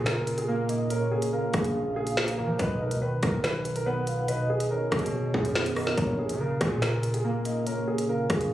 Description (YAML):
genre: hip hop, drill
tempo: 142 BPM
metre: 4/4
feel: half-time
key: Bb phrygian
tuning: A4 = 440 Hz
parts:
  - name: dark grand piano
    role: melody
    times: 0.0-8.5 s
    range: Ab4 to B4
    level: -30 LUFS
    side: right 1 dB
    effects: tape echo
  - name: warbly lo-fi synth keys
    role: accompaniment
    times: 0.0-8.5 s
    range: Bb2 to B3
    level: -31 LUFS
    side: equal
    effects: chorus, phaser
  - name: distorted 808-style bass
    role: bass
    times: 0.0-8.5 s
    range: Bb1 to F3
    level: -32 LUFS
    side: equal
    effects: distortion
  - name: drill drum kit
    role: drums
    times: 0.1-8.5 s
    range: finger snaps, hi-hat, kick drum, rim click, snare drum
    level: -30 LUFS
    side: equal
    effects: none
  - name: soft octave-layered synth lead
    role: second line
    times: 0.5-8.5 s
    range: Db5 to F#5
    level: -36 LUFS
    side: right 1 dB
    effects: chorus, tremolo, tape echo
room: light reverb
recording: recorded on a phone in the room, club reverb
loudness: -25 LUFS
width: side -13 dB against mid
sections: 0.0-8.5 A section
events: none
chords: 0.0 Bbm; 2.6 Badd9; 6.0 Bbm